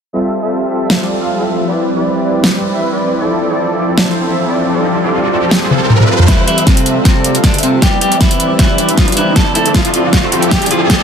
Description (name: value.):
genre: future bass.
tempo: 156 BPM.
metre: 4/4.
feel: swing 54% on 16ths, half-time.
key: F lydian.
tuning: A4 = 441 Hz.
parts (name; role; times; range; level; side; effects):
shimmering ambient pad; sustained chords; 0.6-11.0 s; D3 to E5; -22 LUFS; left 2 dB; chorus, built-in reverb, phaser, sidechain pumping.
soft supersaw; riff; 0.1-11.0 s; F3 to F5; -15 LUFS; equal; sidechain pumping, low-pass filter, digital delay.
pop drum kit; drums; 0.9-11.0 s; hi-hat, snare drum, toms; -15 LUFS; equal; overdrive.
riser; sound effects; 4.2-11.0 s; none; -19 LUFS; right 1 dB; none.
clean electric guitar; melody; 6.3-11.0 s; C3 to A4; -16 LUFS; equal; sidechain pumping, tape echo.
electronic kick drum; drums; 6.3-11.0 s; none; -12 LUFS; equal; overdrive.
room: light reverb, digital ambience.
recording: dense, heavily limited modern master.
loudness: -10 LUFS.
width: side -7 dB against mid.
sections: 0.1-6.3 A section; 6.3-11.0 B section.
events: riser 4.2-6.3, 6.3-11.0; drum fill 5.7-6.3, 6.3-11.0; build-up 6.3-11.0; filter sweep on supersaw synth 6.3-11.0.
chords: 0.1 Fmaj9; 1.7 Cmaj9; 3.2 Dm9; 4.7 G9sus4; 7.8 Cmaj9; 9.4 Dm9.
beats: | 0.13 0.51 0.90 1.28 | 1.67 2.05 2.44 2.82 | 3.21 3.59 3.98 4.36 | 4.75 5.13 5.51 5.90 | 6.28 6.67 7.05 7.44 | 7.82 8.21 8.59 8.98 | 9.36 9.74 10.13 10.51 | 10.90.